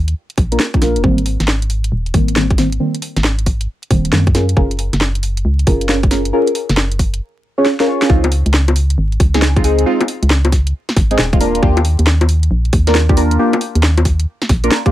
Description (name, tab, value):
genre	UK garage, two-step garage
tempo	136 BPM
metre	4/4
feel	swing 65% on 16ths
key	Db major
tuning	A4 = 440 Hz
part	organ-like FM bass	bass	0.0-14.7 s	Eb1 to Gb2	-15 LUFS	equal	tube saturation
part	garage drum kit	drums	0.1-14.9 s	bongos, hi-hat, snare drum	-18 LUFS	equal	overdrive
part	electronic kick drum	drums	0.4-14.9 s	none	-14 LUFS	equal	overdrive
part	deep mellow chord stab	stabs	0.5-14.9 s	Eb3 to Db5	-16 LUFS	equal	chorus, phaser, ping-pong delay
room	little or no reverb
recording	vinyl crackle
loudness	-12 LUFS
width	side -14 dB against mid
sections	0.0-8.1 A section; 8.1-14.9 B section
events	filter sweep on synth stab 0.0-8.1; drum fill 7.7-8.1; drop 8.1-14.9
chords	0.0 Ebmaj7sus2; 1.0 Abmaj9; 4.3 Gbmaj9; 8.1 Dbmaj9; 11.4 Ebmaj9